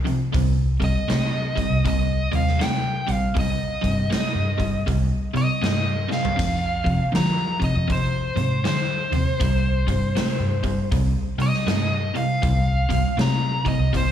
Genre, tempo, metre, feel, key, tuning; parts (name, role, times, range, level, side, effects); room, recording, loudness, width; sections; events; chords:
blues rock power trio and southern rock; 79 BPM; 4/4; swing 63% on 8ths; C minor; A4 = 440 Hz
crunchy overdriven guitar; riff; 0.0-14.1 s; F2 to A3; -25 LUFS; equal
vintage muted fingered electric bass; bass; 0.0-14.1 s; Bb1 to F3; -23 LUFS; equal
huge arena drum kit; drums; 0.1-14.1 s; crash cymbal, hi-hat, kick drum, snare drum, toms; -27 LUFS; equal
nasal lead guitar with a parked wah; melody; 0.8-14.1 s; C5 to Bb5; -27 LUFS; equal; overdrive, slapback echo, analog delay
little or no reverb; live gig heard through the venue's PA, club reverb; -20 LUFS; side -10 dB against mid
0.0-14.1 A section
drum fill 6.0-6.4
0.3 Cm; 6.4 F5; 9.4 Cm